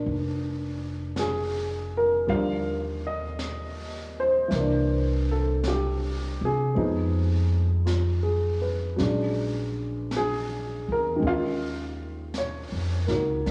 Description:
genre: jazz ballad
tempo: 54 BPM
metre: 4/4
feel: swing 68% on 8ths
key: unclear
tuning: A4 = 443 Hz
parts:
  - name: warm baby grand piano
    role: accompaniment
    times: 0.0-13.5 s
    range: D3 to F5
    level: -29 LUFS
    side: equal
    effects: none
  - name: jazz brush drum kit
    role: drums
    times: 0.0-13.5 s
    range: brushed snare drum, hi-hat, snare drum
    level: -42 LUFS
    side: equal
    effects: cassette tape
  - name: upright bass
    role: bass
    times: 0.1-13.5 s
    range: F1 to C3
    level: -30 LUFS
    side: equal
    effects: none
room: moderate spring reverb, RT60 2.6 s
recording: home recording on cassette, studio reverb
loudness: -27 LUFS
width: mono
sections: 0.0-13.5 A section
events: none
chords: 0.0 Bb7b9; 2.3 Ebmaj9; 4.5 C7; 6.8 Fm7b5; 9.0 Bb7alt; 11.2 Ebm11

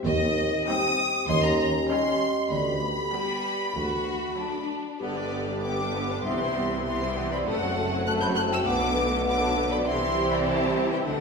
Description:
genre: cinematic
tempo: 98 BPM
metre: 4/4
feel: straight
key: unclear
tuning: A4 = 440 Hz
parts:
  - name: mellow French horn section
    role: sustained chords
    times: 0.0-11.2 s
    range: G3 to G4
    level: -34 LUFS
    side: left 3 dB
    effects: none
  - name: warm studio violin section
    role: melody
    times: 0.1-11.2 s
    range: D5 to G6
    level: -30 LUFS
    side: left 1 dB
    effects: none
  - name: worn celesta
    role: melody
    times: 0.1-11.2 s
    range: G4 to B5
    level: -31 LUFS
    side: left 1 dB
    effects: none
  - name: warm studio cello section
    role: bass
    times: 0.1-11.2 s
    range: D2 to D3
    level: -34 LUFS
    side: right 2 dB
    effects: none
  - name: warm studio double bass section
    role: bass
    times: 0.1-11.2 s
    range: F#1 to Eb2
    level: -35 LUFS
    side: right 2 dB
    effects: none
  - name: warm tuba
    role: bass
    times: 0.1-11.2 s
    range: F#1 to Eb2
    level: -32 LUFS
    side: right 3 dB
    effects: none
  - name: warm studio violin section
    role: second line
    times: 0.7-11.2 s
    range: G3 to B4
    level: -32 LUFS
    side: left 2 dB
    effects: none
  - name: warm studio viola section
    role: accompaniment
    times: 0.7-11.2 s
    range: D3 to D4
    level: -32 LUFS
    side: right 2 dB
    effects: none
room: wet recital hall reverb, RT60 1.5 s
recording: recorded in a church or concert hall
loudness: -23 LUFS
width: side -4 dB against mid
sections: 0.0-11.2 A section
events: none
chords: 0.1 Cm/Eb; 1.3 Eb7; 2.5 G/D; 3.7 D; 5.0 G; 6.2 Cmaj7; 7.5 F#dim; 8.7 Bm7; 9.9 C

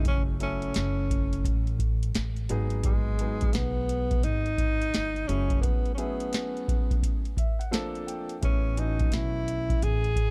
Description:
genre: hip hop, jazz-hop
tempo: 86 BPM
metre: 4/4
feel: swing 63% on 16ths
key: F# dorian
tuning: A4 = 440 Hz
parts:
  - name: breathy tenor saxophone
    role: melody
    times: 0.0-10.3 s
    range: G#3 to G#4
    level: -34 LUFS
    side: equal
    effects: none
  - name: dark concert grand piano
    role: accompaniment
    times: 0.0-10.0 s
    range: E3 to A5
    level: -38 LUFS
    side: equal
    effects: none
  - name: upright bass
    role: bass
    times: 0.0-10.3 s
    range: F#1 to B1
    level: -33 LUFS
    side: equal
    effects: none
  - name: booming analog drum machine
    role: drums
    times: 0.1-10.3 s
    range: hi-hat, kick drum, snare drum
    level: -30 LUFS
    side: equal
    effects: none
room: small room ambience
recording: dark, warm production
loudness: -28 LUFS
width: mono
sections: 0.0-10.3 A section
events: grand piano fill 7.0-8.4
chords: 0.0 F#m7; 2.5 G#m7; 5.3 F#m7; 7.7 A#maj7; 8.4 Amaj7

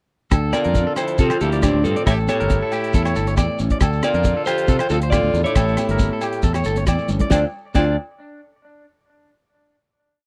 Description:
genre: highlife guitar band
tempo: 137 BPM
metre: 4/4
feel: straight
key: D minor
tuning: A4 = 440 Hz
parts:
  - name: nylon-string guitar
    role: accompaniment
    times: 0.3-8.0 s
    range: A2 to A4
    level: -30 LUFS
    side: equal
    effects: none
  - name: electric guitar at the edge of break-up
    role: arpeggios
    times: 0.3-8.0 s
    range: D4 to D5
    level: -29 LUFS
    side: equal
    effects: tape echo
  - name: fingered electric bass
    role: bass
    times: 0.3-8.0 s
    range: G1 to C3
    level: -24 LUFS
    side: equal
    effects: none
  - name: cloth-damped thuddy drum kit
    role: drums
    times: 0.3-7.9 s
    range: crash cymbal, hi-hat, kick drum, rim click, snare drum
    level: -22 LUFS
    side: equal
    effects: none
  - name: agogo bells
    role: percussion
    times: 0.3-7.9 s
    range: none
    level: -33 LUFS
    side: equal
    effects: none
  - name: congas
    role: percussion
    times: 0.3-8.0 s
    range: none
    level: -32 LUFS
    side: equal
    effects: none
  - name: shekere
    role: percussion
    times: 0.3-8.0 s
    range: none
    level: -33 LUFS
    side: equal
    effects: none
  - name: electric guitar at the edge of break-up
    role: melody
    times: 0.5-8.0 s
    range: D4 to E5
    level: -24 LUFS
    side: equal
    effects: none
  - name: bright trumpet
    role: second line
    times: 0.5-8.0 s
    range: Bb3 to G4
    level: -34 LUFS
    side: equal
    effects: none
room: little or no reverb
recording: dry, close 1970s-style studio recording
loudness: -19 LUFS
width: mono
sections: 0.3-7.3 A section; 7.3-9.1 final chord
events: drum fill 6.8-7.3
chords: 0.3 Dm7; 2.1 A7; 3.8 Dm7; 5.6 A7; 7.3 Dm7

